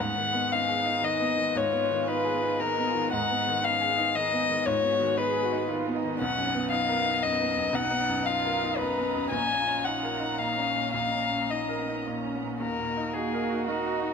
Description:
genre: neoclassical piano and strings.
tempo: 115 BPM.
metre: 3/4.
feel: rubato.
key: unclear.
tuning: A4 = 442 Hz.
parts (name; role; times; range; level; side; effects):
muted violin; melody; 0.0-14.1 s; Gb4 to Ab5; -27 LUFS; left 4 dB; none.
muted cello; second line; 0.0-14.1 s; Bb3 to Ab4; -36 LUFS; right 6 dB; none.
bright grand piano; accompaniment; 0.0-14.1 s; Bb1 to A#4; -31 LUFS; right 1 dB; none.
muted studio string section; sustained chords; 0.0-14.1 s; Cb4 to A#5; -38 LUFS; equal; none.
room: moderate concert hall reverb, RT60 2.0 s.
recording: none.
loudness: -25 LUFS.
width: side -6 dB against mid.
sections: 0.0-12.6 A section; 12.6-14.1 B section.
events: none.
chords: 0.0 Abm7; 6.2 Bmaj7; 9.3 Eb7(no3)/Bb; 12.6 Ebm.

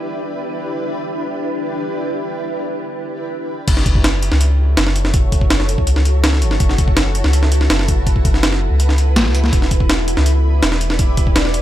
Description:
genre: drum and bass, jungle.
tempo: 164 BPM.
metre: 4/4.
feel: straight.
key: F# phrygian.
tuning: A4 = 442 Hz.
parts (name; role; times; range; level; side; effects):
granular cloud pad; sustained chords; 0.0-11.6 s; D4 to D5; -23 LUFS; equal; built-in reverb.
soft dub sub bass; bass; 3.7-11.6 s; E1 to C#2; -16 LUFS; equal; none.
breakbeat sampler-style drum kit; drums; 3.7-11.6 s; crash cymbal, hi-hat, kick drum, snare drum; -16 LUFS; equal; studio reverb.
room: digital ambience.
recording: none.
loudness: -14 LUFS.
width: side -13 dB against mid.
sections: 0.0-3.7 A section; 3.7-11.6 B section.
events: drop 3.7-11.6.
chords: 0.0 Em7; 3.7 F#m7; 9.5 Em7.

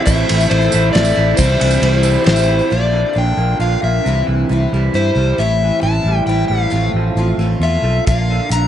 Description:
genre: folk rock and heartland rock.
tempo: 134 BPM.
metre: 3/4.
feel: straight.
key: unclear.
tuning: A4 = 440 Hz.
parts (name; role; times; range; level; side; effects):
overdriven slide guitar; melody; 0.0-8.7 s; C5 to Bb5; -19 LUFS; left 3 dB; analog delay.
picked twelve-string acoustic guitar; accompaniment; 0.0-8.7 s; A2 to F4; -23 LUFS; left 6 dB; analog delay.
mellow tonewheel organ; sustained chords; 0.0-8.7 s; C4 to Bb4; -29 LUFS; right 2 dB; none.
electric guitar through a small old amp; riff; 0.0-8.7 s; A2 to F4; -21 LUFS; right 4 dB; phaser, analog delay.
fingered electric bass; bass; 0.1-8.7 s; A1 to G2; -16 LUFS; equal; none.
cloth-damped thuddy drum kit; drums; 0.1-2.4, 8.1-8.6 s; hi-hat, kick drum, ride cymbal, snare drum; -20 LUFS; right 1 dB; none.
tambourine; percussion; 0.1-2.6 s; none; -29 LUFS; right 8 dB; analog delay.
room: studio reverb.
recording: echo-heavy mix, nothing above 10.9 kHz.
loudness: -12 LUFS.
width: side -10 dB against mid.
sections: 0.0-2.7 A section; 2.7-8.7 B section.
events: none.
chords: 0.1 Am; 1.4 C; 2.7 Bb; 4.0 C; 5.4 Am7; 6.7 F/A; 8.1 Bb.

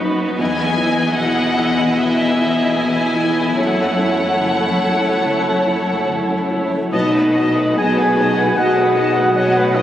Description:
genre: cinematic, emotional film score for orchestra.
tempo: 69-79 BPM.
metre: 4/4.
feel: rubato.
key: unclear.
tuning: A4 = 440 Hz.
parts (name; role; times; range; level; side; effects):
warm studio violin section; second line; 0.0-9.8 s; F#4 to D#5; -22 LUFS; left 1 dB; none.
clear studio viola section; accompaniment; 0.0-9.8 s; A3 to E4; -22 LUFS; right 1 dB; none.
felt-muted upright piano; accompaniment; 0.0-9.8 s; B1 to E4; -22 LUFS; left 1 dB; none.
warm studio cello section; bass; 0.0-9.8 s; E2 to B2; -24 LUFS; right 1 dB; none.
warm studio violin section; melody; 0.4-9.8 s; E5 to A5; -23 LUFS; left 1 dB; none.
large flute ensemble; second line; 6.9-9.8 s; D#5 to G#5; -22 LUFS; equal; none.
warm oboe; second line; 6.9-9.8 s; D#5 to G#5; -22 LUFS; equal; none.
dark French horn section; sustained chords; 6.9-9.8 s; D#4 to G#4; -17 LUFS; left 1 dB; none.
warm studio double bass section; bass; 6.9-9.8 s; B1; -28 LUFS; right 1 dB; none.
warm clarinet; second line; 8.6-9.8 s; B4 to D#5; -22 LUFS; left 2 dB; none.
room: wet cathedral reverb, RT60 4.8 s.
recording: recorded on a phone in the room, club reverb, compression.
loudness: -14 LUFS.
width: side -11 dB against mid.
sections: 0.0-6.9 A section; 6.9-9.8 A section.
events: none.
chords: 0.4 Emaj7; 3.6 F#m7; 6.9 B7.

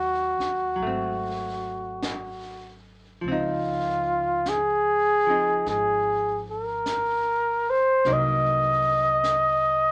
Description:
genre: jazz ballad.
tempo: 50 BPM.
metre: 4/4.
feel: swing 66% on 8ths.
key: unclear.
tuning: A4 = 441 Hz.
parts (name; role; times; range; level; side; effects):
mellow flugelhorn; melody; 0.0-9.9 s; F4 to Eb5; -25 LUFS; equal; none.
archtop guitar, miked and amplified; accompaniment; 0.0-9.9 s; Eb3 to Eb4; -36 LUFS; equal; none.
upright bass; bass; 0.0-9.9 s; Ab1 to Eb2; -38 LUFS; equal; none.
jazz brush drum kit; drums; 0.4-9.9 s; brushed snare drum, hi-hat, snare drum; -41 LUFS; equal; none.
room: light reverb.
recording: none.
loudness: -24 LUFS.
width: mono.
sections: 0.0-9.9 A section.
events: none.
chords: 0.0 Ebm7; 0.8 Ab7b9; 3.2 Dbmaj9; 8.0 Cm7b5.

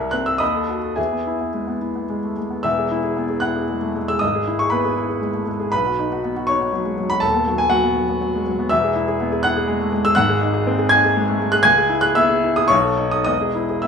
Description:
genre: classical, romantic character piece for solo piano.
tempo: 104-126 BPM.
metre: 3/4.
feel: rubato.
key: E major.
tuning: A4 = 439 Hz.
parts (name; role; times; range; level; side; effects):
clear baby grand piano; solo; 0.0-13.9 s; D#1 to G#6; -17 LUFS; equal; none.
room: light reverb.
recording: studio reverb.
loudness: -17 LUFS.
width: side -6 dB against mid.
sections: 0.0-2.6 A section; 2.6-13.9 B section.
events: none.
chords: 0.4 B7/D#; 1.0 E; 4.2 E/G#; 5.7 B; 7.2 B/D#; 8.7 E; 10.2 G#7; 11.7 C#m7; 12.7 B7; 13.3 E.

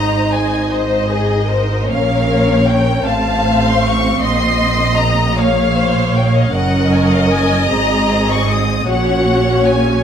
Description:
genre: classical, slow romantic movement for string orchestra.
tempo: 51 BPM (dotted quarters).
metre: 6/8.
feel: rubato.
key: unclear.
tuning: A4 = 440 Hz.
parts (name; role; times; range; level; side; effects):
rich studio violin section; melody; 0.0-10.0 s; Eb5 to Eb6; -20 LUFS; left 2 dB; none.
rich studio violin section; second line; 0.0-10.0 s; Ab4 to F5; -18 LUFS; left 4 dB; none.
rich studio viola section; accompaniment; 0.0-10.0 s; Bb3 to Eb5; -19 LUFS; right 1 dB; none.
bright studio cello section; bass; 0.0-10.0 s; Gb2 to Bb2; -19 LUFS; right 1 dB; none.
bright studio double bass section; bass; 0.0-10.0 s; Gb1 to Bb1; -19 LUFS; right 2 dB; none.
room: wet recital hall reverb, RT60 1.6 s.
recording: none.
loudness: -12 LUFS.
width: side -8 dB against mid.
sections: 0.0-10.0 A section.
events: none.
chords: 0.0 Ab; 1.9 Bbm; 3.1 F/A; 4.2 Bbm; 6.5 Gb; 7.7 Ab; 8.9 Gb/Bb.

